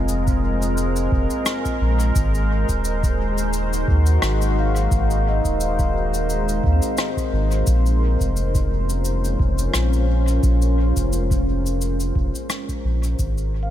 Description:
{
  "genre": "ambient dub",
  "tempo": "87 BPM",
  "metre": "4/4",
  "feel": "swing 55% on 16ths",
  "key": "Bb minor",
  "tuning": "A4 = 440 Hz",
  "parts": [
    { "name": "deep dark ambient pad", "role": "sustained chords", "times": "0.0-13.7 s", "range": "Ab3 to C5", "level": "-25 LUFS", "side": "equal", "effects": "chorus, built-in reverb" },
    { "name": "vibraphone with soft mallets", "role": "arpeggios", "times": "0.0-8.3, 13.6-13.7 s", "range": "C4 to F5", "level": "-29 LUFS", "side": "left 4 dB", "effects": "auto-pan, tape echo" },
    { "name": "soft dub sub bass", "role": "bass", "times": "0.0-13.7 s", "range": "Eb1 to Eb2", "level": "-20 LUFS", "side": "equal", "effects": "tube saturation" },
    { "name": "cabasa and rim click", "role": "drums", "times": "0.1-13.5 s", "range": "none", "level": "-29 LUFS", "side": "left 2 dB", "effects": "dub echo" },
    { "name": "electronic kick drum", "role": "drums", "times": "0.3-13.3 s", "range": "none", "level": "-24 LUFS", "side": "equal", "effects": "none" }
  ],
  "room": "light reverb",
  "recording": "none",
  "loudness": "-18 LUFS",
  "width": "side -12 dB against mid",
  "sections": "0.0-13.7 A section",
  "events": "fade-out 11.3-13.7",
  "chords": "0.0 Bbsus2; 2.2 Ab9; 7.7 Bbm9; 13.2 Ab9",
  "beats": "0.09 0.78 1.47 | 2.15 2.84 3.53 4.22 | 4.91 5.60 6.29 6.98 | 7.67 8.36 9.05 9.74 | 10.43 11.12 11.81 12.50 | 13.19"
}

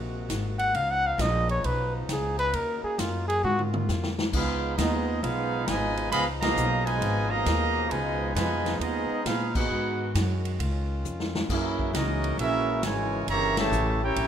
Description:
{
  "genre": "jazz, big band swing",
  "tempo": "134 BPM",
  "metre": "4/4",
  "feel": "swing 66% on 8ths",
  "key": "Db mixolydian, Db major from 4.3 s",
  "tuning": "A4 = 440 Hz",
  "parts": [
    { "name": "bright trombone section", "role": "sustained chords", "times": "0.0-14.3 s", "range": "C3 to Gb4", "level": "-37 LUFS", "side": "left 2 dB", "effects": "none" },
    { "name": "upright bass", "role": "bass", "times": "0.0-14.3 s", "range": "G1 to Bb2", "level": "-30 LUFS", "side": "equal", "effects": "none" },
    { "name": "swinging big-band drum kit", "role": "drums", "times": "0.3-14.3 s", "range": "crash cymbal, hi-hat, kick drum, ride cymbal, snare drum, toms", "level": "-33 LUFS", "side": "left 1 dB", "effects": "none" },
    { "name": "mellow trumpet", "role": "melody", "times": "0.6-3.6 s", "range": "Eb4 to Gb5", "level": "-26 LUFS", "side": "left 1 dB", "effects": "none" },
    { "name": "warm trumpet section", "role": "melody", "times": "4.3-14.3 s", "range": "Cb4 to Cb6", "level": "-28 LUFS", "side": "right 1 dB", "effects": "none" },
    { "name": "clear trombone section", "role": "second line", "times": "4.3-14.3 s", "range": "Cb3 to G4", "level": "-31 LUFS", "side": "right 4 dB", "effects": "none" }
  ],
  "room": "light reverb",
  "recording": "minimal, uncompressed stereo recording",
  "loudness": "-24 LUFS",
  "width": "side -9 dB against mid",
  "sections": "0.0-4.3 A section; 4.3-14.3 B section",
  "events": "trumpet solo 0.0-4.3; drum fill 3.4-4.3, 11.0-11.5; band accent 6.3, 9.5, 13.5",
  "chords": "0.0 Ab9; 0.7 Db9; 2.5 Ebm7; 3.4 Ab13; 4.3 Db9; 9.7 Abm7; 10.6 Dbadd9; 11.5 Gb9; 13.3 Gdim7",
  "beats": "0.29 | 0.74 1.19 1.64 2.09 | 2.53 2.98 3.43 3.88 | 4.33 4.77 5.22 5.67 | 6.12 6.56 7.01 7.46 | 7.91 8.36 8.80 9.25 | 9.70 10.14 10.59 11.04 | 11.49 11.94 12.38 12.83 | 13.28 13.72 14.17"
}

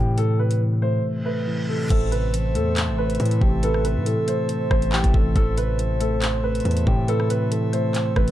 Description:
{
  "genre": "hip hop, drill",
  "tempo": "139 BPM",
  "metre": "4/4",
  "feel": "half-time",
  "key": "A minor",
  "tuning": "A4 = 440 Hz",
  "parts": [
    { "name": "dark baby grand piano", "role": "melody", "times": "0.0-8.3 s", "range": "G4 to C5", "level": "-27 LUFS", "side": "right 2 dB", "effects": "ping-pong delay" },
    { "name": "mellow tine electric piano", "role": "accompaniment", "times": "0.0-8.3 s", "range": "A2 to A3", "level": "-25 LUFS", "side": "left 1 dB", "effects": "none" },
    { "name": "hard-hitting 808-style bass", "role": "bass", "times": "0.0-8.3 s", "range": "A1 to A2", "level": "-24 LUFS", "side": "equal", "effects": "none" },
    { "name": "drill drum kit", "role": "drums", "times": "0.2-8.3 s", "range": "crash cymbal, handclaps, hi-hat, kick drum, rim click", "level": "-23 LUFS", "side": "equal", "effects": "none" },
    { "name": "reverse cymbal", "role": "sound effects", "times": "1.2-1.9 s", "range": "none", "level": "-36 LUFS", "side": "right 1 dB", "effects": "none" },
    { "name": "warm velvety synth lead", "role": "second line", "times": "1.9-8.3 s", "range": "A4 to C5", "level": "-30 LUFS", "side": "right 2 dB", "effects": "chorus, ping-pong delay" },
    { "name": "pipe organ, cornet", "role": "sustained chords", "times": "1.9-8.3 s", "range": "A3 to E5", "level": "-34 LUFS", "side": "left 2 dB", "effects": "none" }
  ],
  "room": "little or no reverb",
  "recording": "dark, warm production",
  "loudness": "-19 LUFS",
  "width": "side -13 dB against mid",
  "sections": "0.0-1.9 A section; 1.9-8.3 B section",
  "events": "break 1.0-1.9; reverse cymbal 1.2-1.9",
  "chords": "0.0 Am",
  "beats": "| 0.18 0.61 1.04 1.47 | 1.90 2.33 2.77 3.20 | 3.63 4.06 4.49 4.92 | 5.36 5.79 6.22 6.65 | 7.08 7.51 7.95"
}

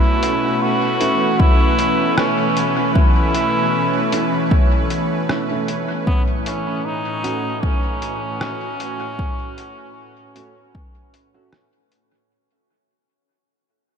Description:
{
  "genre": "ambient dub",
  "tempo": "77 BPM",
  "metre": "4/4",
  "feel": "swing 54% on 16ths",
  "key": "unclear",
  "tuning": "A4 = 440 Hz",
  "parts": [
    { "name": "trombone with metal mute", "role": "melody", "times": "0.0-11.5 s", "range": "B3 to F#4", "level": "-22 LUFS", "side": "right 1 dB", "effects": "dub echo" },
    { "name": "warm analog pad", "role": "sustained chords", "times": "0.0-12.3 s", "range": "A2 to B4", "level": "-22 LUFS", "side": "equal", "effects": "chorus, tremolo" },
    { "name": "drifting glass-harmonics texture", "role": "texture", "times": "0.5-12.3 s", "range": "C#5", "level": "-34 LUFS", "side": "right 10 dB", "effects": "chorus, built-in reverb" },
    { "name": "lo-fi sampler-style drum kit", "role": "drums", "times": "0.2-12.1 s", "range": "hi-hat, rim click", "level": "-29 LUFS", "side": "left 1 dB", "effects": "dub echo" },
    { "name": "clear upright piano", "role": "stabs", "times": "1.0-11.5 s", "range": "A3 to F#4", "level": "-29 LUFS", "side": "right 2 dB", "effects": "none" },
    { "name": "electronic kick drum", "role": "drums", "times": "1.4-10.9 s", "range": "none", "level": "-16 LUFS", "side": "equal", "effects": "overdrive" }
  ],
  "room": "moderate huge ambient reverb, RT60 8.1 s",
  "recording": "dreamy mix soaked in reverb",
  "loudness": "-16 LUFS",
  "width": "side -7 dB against mid",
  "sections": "0.0-12.3 A section",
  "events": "fade-out 4.0-12.3",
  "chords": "0.0 B9sus4; 6.1 A6",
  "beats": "0.62 1.40 2.17 | 2.95 3.73 4.51 5.29 | 6.07 6.85 7.63 8.41 | 9.19 9.97 10.75 11.53"
}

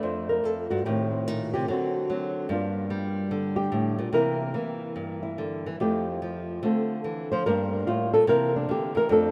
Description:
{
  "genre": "solo jazz",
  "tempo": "146 BPM",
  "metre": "4/4",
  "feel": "swing 64% on 8ths, rubato",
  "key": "unclear",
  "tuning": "A4 = 441 Hz",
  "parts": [
    { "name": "flamenco guitar", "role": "solo", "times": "0.0-9.3 s", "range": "F2 to C5", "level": "-27 LUFS", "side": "equal", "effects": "none" }
  ],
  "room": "wet huge ambient reverb, RT60 4.5 s",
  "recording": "heard from further back in the room",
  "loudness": "-27 LUFS",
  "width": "mono",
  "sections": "0.0-9.3 A section",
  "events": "nylon-string guitar solo 0.0-9.3",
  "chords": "0.0 F6; 0.9 Adim; 1.7 D7; 2.5 Gm7; 4.1 C7; 5.8 Fmaj9; 6.6 Dm9; 7.5 Gm; 8.3 C7",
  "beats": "0.03 0.44 | 0.85 1.27 1.68 2.09 | 2.49 2.90 3.31 3.72 | 4.12 4.54 4.95 5.38 | 5.80 6.21 6.63 7.05 | 7.46 7.88 8.29 8.70 | 9.11"
}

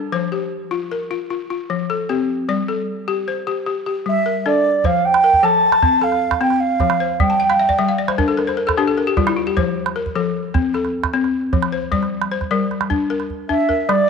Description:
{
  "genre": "west african traditional, West African string and xylophone music",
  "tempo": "102 BPM (dotted quarters)",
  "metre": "12/8",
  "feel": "straight",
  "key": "F major",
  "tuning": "A4 = 440 Hz",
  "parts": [
    { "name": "balafon", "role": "arpeggios", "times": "0.0-14.1 s", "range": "F3 to A5", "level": "-19 LUFS", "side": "left 5 dB", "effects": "none" },
    { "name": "baroque flute", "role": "melody", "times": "4.1-8.0, 13.5-14.1 s", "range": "D5 to A5", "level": "-15 LUFS", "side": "right 3 dB", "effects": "none" },
    { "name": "calabash", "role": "percussion", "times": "4.8-14.1 s", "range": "none", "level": "-22 LUFS", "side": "right 5 dB", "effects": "none" }
  ],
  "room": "wet echo chamber reverb, RT60 2.0 s",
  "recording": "1960s-style stereo",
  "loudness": "-16 LUFS",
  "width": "side -5 dB against mid",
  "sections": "0.0-4.8 A section; 4.8-14.1 B section",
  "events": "balafon fill 7.3-9.6; drum fill 13.3-14.1",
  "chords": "0.1 F; 2.5 Gm; 4.8 F; 7.2 G5; 9.6 F; 11.9 Gm",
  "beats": "| 0.12 0.71 1.30 1.90 | 2.49 3.08 3.67 4.26 | 4.85 5.44 6.03 6.62 | 7.20 7.79 8.38 8.97 | 9.56 10.15 10.74 11.33 | 11.92 12.51 13.10 13.69"
}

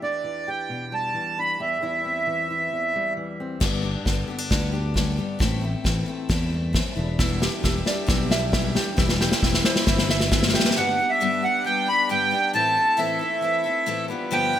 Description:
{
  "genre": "indie folk with a building arrangement",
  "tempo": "134 BPM",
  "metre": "4/4",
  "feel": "straight",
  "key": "unclear",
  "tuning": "A4 = 441 Hz",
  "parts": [
    { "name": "accordion", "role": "melody", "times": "0.0-3.1, 10.8-14.6 s", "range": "D5 to B5", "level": "-22 LUFS", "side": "right 2 dB", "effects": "none" },
    { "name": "fingerpicked steel-string acoustic guitar", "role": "accompaniment", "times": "0.0-9.0 s", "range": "E2 to G4", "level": "-33 LUFS", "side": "left 2 dB", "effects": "none" },
    { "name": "picked steel-string acoustic guitar", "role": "accompaniment", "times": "3.6-14.6 s", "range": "E2 to A4", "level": "-29 LUFS", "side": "left 7 dB", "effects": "wide subtle chorus" },
    { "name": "fingered electric bass", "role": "bass", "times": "3.6-10.5 s", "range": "E1 to E2", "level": "-26 LUFS", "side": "equal", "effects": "none" },
    { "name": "unplugged drum kit", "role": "drums", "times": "3.6-10.8 s", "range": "crash cymbal, kick drum, snare drum", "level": "-22 LUFS", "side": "left 1 dB", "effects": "gated reverb" },
    { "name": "bright brass ensemble", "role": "sustained chords", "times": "7.2-14.6 s", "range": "E3 to B4", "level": "-33 LUFS", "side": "equal", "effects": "none" },
    { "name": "ukulele", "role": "arpeggios", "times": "7.2-10.8 s", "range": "E4 to E5", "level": "-29 LUFS", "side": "right 4 dB", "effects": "none" }
  ],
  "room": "moderate lush hall reverb, RT60 2.1 s",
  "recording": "bright 1980s-style digital production",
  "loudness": "-20 LUFS",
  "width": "side -10 dB against mid",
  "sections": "0.0-3.6 A section; 3.6-10.8 B section; 10.8-14.6 C section",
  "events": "build-up 3.6-10.8; drum fill 3.6-10.8",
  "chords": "0.0 Em7; 1.8 C/E; 3.6 G; 5.4 Am; 7.0 Em7; 9.0 C/E; 10.8 G; 12.5 Am; 14.1 G7",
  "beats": "| 0.03 0.48 0.93 1.37 | 1.82 2.27 2.72 3.17 | 3.62 4.07 4.51 4.96 | 5.41 5.86 6.30 6.75 | 7.20 7.64 8.09 8.53 | 8.98 9.43 9.87 10.32 | 10.76 11.21 11.65 12.10 | 12.54 12.98 13.43 13.87 | 14.32"
}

